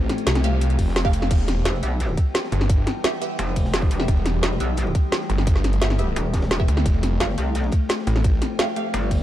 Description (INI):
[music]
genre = dark technical drum and bass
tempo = 173 BPM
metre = 4/4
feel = straight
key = E phrygian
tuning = A4 = 438 Hz
[part]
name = metallic inharmonic drone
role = sustained chords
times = 0.0-9.2 s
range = E3 to G4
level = -29 LUFS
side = left 3 dB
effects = chorus, built-in reverb, sidechain pumping
[part]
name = snarling distorted saw bass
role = bass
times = 0.0-8.4 s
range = E1 to D2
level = -21 LUFS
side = equal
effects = distortion, tube saturation, sidechain pumping
[part]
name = crunchy breakbeat drum kit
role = drums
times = 0.1-9.2 s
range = hi-hat, ride cymbal, snare drum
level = -38 LUFS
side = equal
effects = none
[part]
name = drum and bass drum kit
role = drums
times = 0.1-9.2 s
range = crash cymbal, hi-hat, snare drum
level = -25 LUFS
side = equal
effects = none
[part]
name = filtered dub chord stab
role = stabs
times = 0.4-8.9 s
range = A3 to F5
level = -30 LUFS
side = right 3 dB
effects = phaser, lush chorus, digital delay
[part]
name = electronic kick drum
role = drums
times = 0.8-9.2 s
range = none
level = -20 LUFS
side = equal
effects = none
[part]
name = metallic wobble bass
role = bass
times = 1.7-9.2 s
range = E1 to C2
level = -24 LUFS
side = equal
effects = chorus
[sound]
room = digital ambience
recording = dark, warm production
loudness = -19 LUFS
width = side -13 dB against mid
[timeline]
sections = 0.0-9.2 A section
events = none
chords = 0.0 Fadd9; 1.3 Em; 6.9 Fadd9